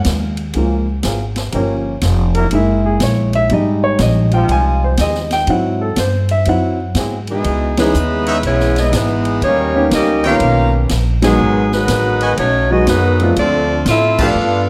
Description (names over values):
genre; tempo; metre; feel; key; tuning
jazz, big band swing; 122 BPM; 4/4; swing 66% on 8ths; C# minor from 7.4 s; A4 = 435 Hz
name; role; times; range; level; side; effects
warm baby grand piano; accompaniment; 0.0-14.4 s; D#3 to Ab5; -19 LUFS; equal; none
upright bass; bass; 0.0-14.7 s; F1 to A2; -20 LUFS; equal; none
swinging big-band drum kit; drums; 0.0-14.3 s; crash cymbal, hi-hat, kick drum, ride cymbal, snare drum; -26 LUFS; equal; none
mellow trombone section; sustained chords; 0.5-7.2 s; F3 to Bb4; -26 LUFS; equal; none
clear saxophone section; melody; 7.3-14.7 s; E3 to E#5; -18 LUFS; equal; none
clear trombone section; second line; 7.3-14.7 s; B2 to E#4; -23 LUFS; equal; none
bright trumpet section; stabs; 8.3-14.3 s; D#4 to A5; -25 LUFS; equal; none
room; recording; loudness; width
moderate recital hall reverb, RT60 1.3 s; none; -15 LUFS; mono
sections
0.0-7.4 A section; 7.4-14.7 B section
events
grand piano solo 0.0-7.4; band accent 7.7, 11.1, 14.1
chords
0.0 Gbmaj9; 1.5 Gm7b5; 2.5 Gb9; 3.5 Fm7; 5.5 Ab7b13; 7.4 C#m9; 9.4 D#7b13; 11.4 G#m7; 13.4 Dm7